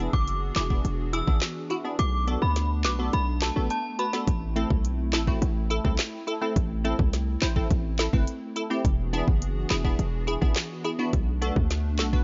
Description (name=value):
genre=dancehall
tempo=105 BPM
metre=4/4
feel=straight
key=A dorian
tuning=A4 = 440 Hz
part: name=wavetable chord stab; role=accompaniment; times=0.0-12.2 s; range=A3 to C5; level=-33 LUFS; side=equal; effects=sidechain pumping
part: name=hollow soft pad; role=sustained chords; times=0.0-12.2 s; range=E3 to G#4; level=-38 LUFS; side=equal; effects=ensemble chorus, sidechain pumping
part: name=hard-hitting 808-style bass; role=bass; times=0.0-12.2 s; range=E1 to D2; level=-29 LUFS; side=equal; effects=none
part: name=synth chime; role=melody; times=0.1-4.1 s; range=A5 to E6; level=-34 LUFS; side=equal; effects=ensemble chorus, phaser, digital delay
part: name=island pop drum kit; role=drums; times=0.1-12.2 s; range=handclaps, hi-hat, kick drum, snare drum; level=-29 LUFS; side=equal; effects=none
room=digital ambience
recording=nothing above 7.5 kHz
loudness=-26 LUFS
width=mono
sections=0.0-12.2 A section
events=kick muted 2.0-4.3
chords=0.0 E7; 2.0 Bm7; 4.3 Am; 8.8 E7; 11.1 Bm7